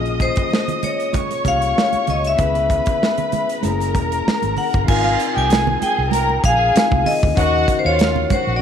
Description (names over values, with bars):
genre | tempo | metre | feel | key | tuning
lush 1970s-style soul | 96 BPM | 4/4 | swing 54% on 16ths | Ab major | A4 = 442 Hz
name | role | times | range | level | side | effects
rich symphonic violin section | second line | 0.0-8.6 s | F4 to Eb6 | -22 LUFS | right 1 dB | none
mellow tine electric piano | accompaniment | 0.0-8.6 s | Ab3 to Bb4 | -26 LUFS | left 12 dB | none
vintage muted fingered electric bass | bass | 0.0-8.6 s | Fb1 to Eb2 | -22 LUFS | right 1 dB | none
modern studio drum kit | drums | 0.1-8.5 s | crash cymbal, hi-hat, kick drum, snare drum | -21 LUFS | right 1 dB | none
vibraphone with hard mallets | melody | 0.2-8.6 s | C5 to Ab5 | -20 LUFS | left 2 dB | none
congas | percussion | 0.5-8.5 s | none | -27 LUFS | right 12 dB | none
room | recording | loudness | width
light reverb | 1960s-style stereo with parts hard left and right | -15 LUFS | side -8 dB against mid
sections
0.0-4.9 A section; 4.9-8.6 B section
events
none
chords
0.0 Bbm7; 2.4 Dbm7; 3.6 Gb9; 4.9 Ab69; 7.4 Ebm9